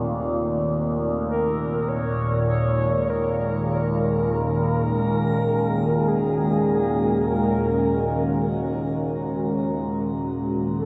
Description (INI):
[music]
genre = dark ambient drone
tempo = 51 BPM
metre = 4/4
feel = straight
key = unclear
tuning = A4 = 438 Hz
[part]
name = deep dark ambient pad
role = sustained chords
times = 0.0-10.9 s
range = Eb3 to Bb4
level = -28 LUFS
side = equal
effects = chorus, built-in reverb, shimmer reverb
[part]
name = overtone-sweeping drone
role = drone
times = 0.0-10.9 s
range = Eb2 to Bb2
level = -27 LUFS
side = equal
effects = chorus, built-in reverb, phaser
[part]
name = mellow horn-like synth lead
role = melody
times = 1.3-10.9 s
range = Ab4 to Db5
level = -29 LUFS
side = equal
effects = chorus, shimmer reverb, tape echo
[sound]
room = wet huge ambient reverb, RT60 7.3 s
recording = none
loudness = -23 LUFS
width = mono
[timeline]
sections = 0.0-10.9 A section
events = fade-out 7.6-10.9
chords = 0.0 F; 1.3 Ebm